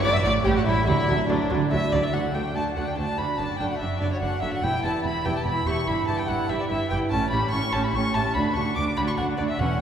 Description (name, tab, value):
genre	classical, baroque-style concerto movement with solo episodes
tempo	145 BPM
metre	3/4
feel	straight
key	D major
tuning	A4 = 438 Hz
part	rich chamber violin section	melody	0.0-9.8 s	F#4 to E6	-35 LUFS	left 3 dB	none
part	rich violin	melody	0.0-9.8 s	D4 to D6	-28 LUFS	left 1 dB	none
part	warm chamber violin section	second line	0.0-9.8 s	D4 to D6	-31 LUFS	left 1 dB	none
part	lute	accompaniment	0.0-9.8 s	D2 to G4	-32 LUFS	right 1 dB	none
part	warm chamber viola section	accompaniment	0.0-9.8 s	F#3 to E4	-30 LUFS	right 2 dB	none
part	warm chamber cello section	bass	0.0-9.7 s	D2 to D3	-29 LUFS	right 3 dB	none
part	warm chamber double bass section	bass	0.0-9.7 s	E1 to D2	-29 LUFS	right 2 dB	none
room	wet cathedral reverb, RT60 4.1 s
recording	recorded in a church or concert hall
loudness	-22 LUFS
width	side -8 dB against mid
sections	0.0-2.1 A section; 2.1-9.8 B section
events	none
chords	0.0 D/A; 0.5 A7; 0.9 D; 3.4 D/F#; 4.6 Em; 5.9 Em/G; 7.1 A7; 8.4 D